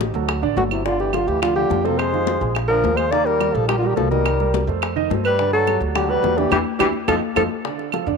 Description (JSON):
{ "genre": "Afro-Cuban jazz", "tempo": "212 BPM", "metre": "4/4", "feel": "straight", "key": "unclear", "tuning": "A4 = 439 Hz", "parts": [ { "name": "warm grand piano", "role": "accompaniment", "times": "0.0-8.2 s", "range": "C3 to Eb5", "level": "-24 LUFS", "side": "right 14 dB", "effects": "none" }, { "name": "upright bass", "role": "bass", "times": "0.0-8.2 s", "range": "G1 to G2", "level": "-25 LUFS", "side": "equal", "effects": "none" }, { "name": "bongos", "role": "percussion", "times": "0.0-8.2 s", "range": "none", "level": "-30 LUFS", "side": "left 15 dB", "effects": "none" }, { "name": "congas", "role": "percussion", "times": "0.0-8.1 s", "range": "none", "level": "-28 LUFS", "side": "left 17 dB", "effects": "none" }, { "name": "claves", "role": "percussion", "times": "0.3-8.1 s", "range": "none", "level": "-29 LUFS", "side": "right 16 dB", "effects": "none" }, { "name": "breathy alto saxophone", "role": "melody", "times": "0.6-7.4 s", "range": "E4 to D5", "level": "-22 LUFS", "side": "right 1 dB", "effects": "none" }, { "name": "bright trombone", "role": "second line", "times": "0.6-7.4 s", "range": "C3 to Bb3", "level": "-26 LUFS", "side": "left 11 dB", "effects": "none" } ], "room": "moderate plate reverb, RT60 3.2 s", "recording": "1960s-style stereo with parts hard left and right", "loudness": "-17 LUFS", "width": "side -5 dB against mid", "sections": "0.0-7.7 A section", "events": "band accent 6.5-7.7", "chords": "0.3 D; 0.9 G5; 2.0 Fm7; 2.6 Bb7; 3.1 Eb; 4.3 Cm7; 4.8 F9; 5.4 Gmaj9; 6.5 Em7; 7.1 F7; 7.7 Dm" }